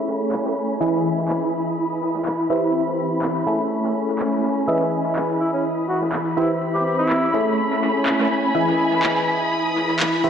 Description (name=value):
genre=piano house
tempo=124 BPM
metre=4/4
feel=swing 54% on 16ths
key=E major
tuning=A4 = 441 Hz
part: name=muted studio violin section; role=sustained chords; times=0.0-10.3 s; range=B5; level=-27 LUFS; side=left 1 dB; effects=none
part: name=barking FM electric piano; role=riff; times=0.0-10.3 s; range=E3 to E5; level=-22 LUFS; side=equal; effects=phaser, analog delay
part: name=dark studio string section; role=texture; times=0.0-10.3 s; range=A3 to D#6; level=-24 LUFS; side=equal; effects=none
part: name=jazz brush drum kit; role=drums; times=0.1-10.3 s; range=hi-hat, snare drum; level=-34 LUFS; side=right 1 dB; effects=high-pass filter on hats, low-pass filter on hats, small room ambience, high-pass filter on snare, low-pass filter on snare, high-pass filter on room, low-pass filter on room
part: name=electronic handclaps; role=drums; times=0.3-10.1 s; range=none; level=-28 LUFS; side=equal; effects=overdrive, small room ambience
part: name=clear tenor saxophone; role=melody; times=5.4-7.4 s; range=C#4 to G4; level=-25 LUFS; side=equal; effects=vintage 12-bit sampler grit, analog delay
room=wet lush hall reverb, RT60 1.8 s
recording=dreamy mix soaked in reverb, low-pass filter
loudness=-18 LUFS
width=side -8 dB against mid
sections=0.0-10.3 A section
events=filter sweep 0.0-10.3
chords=0.0 Amaj7; 0.8 Emaj7; 2.5 Cmaj7/E; 3.5 Amaj7; 4.7 Emaj7; 6.4 Cmaj7/E; 7.3 Amaj7; 8.5 Emaj7